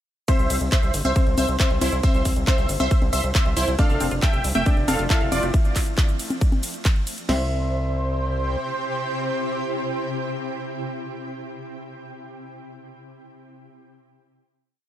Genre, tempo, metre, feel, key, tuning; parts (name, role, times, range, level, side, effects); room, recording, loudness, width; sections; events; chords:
uplifting trance; 137 BPM; 4/4; straight; C major; A4 = 444 Hz
supersaw stab; melody; 0.3-11.6 s; E4 to G5; -27 LUFS; right 1 dB; cassette tape, sidechain pumping, tape echo
warm concert grand piano; second line; 0.3-11.9 s; C4 to E5; -31 LUFS; left 2 dB; tape echo
big-room dance drum kit; drums; 0.3-7.4 s; crash cymbal, kick drum, snare drum; -20 LUFS; equal; small room ambience
big-room dance drum kit; drums; 0.3-7.3 s; congas, handclaps, hi-hat, ride cymbal, shaker; -28 LUFS; left 1 dB; small room ambience
gritty driven synth bass; bass; 0.4-8.6 s; F1 to C2; -25 LUFS; equal; sidechain pumping
shimmering ambient pad; sustained chords; 4.4-11.6 s; C3 to G5; -32 LUFS; equal; chorus, built-in reverb, sidechain pumping
analog pluck; arpeggios; 3.8-7.5 s; A3 to A4; -32 LUFS; equal; chorus, sidechain pumping, tape echo
little or no reverb; -20 LUFS; side -12 dB against mid
0.3-7.3 drop; 7.3-10.8 final chord
drop 0.3-7.3
0.3 C; 3.8 F; 5.5 N.C.; 7.3 C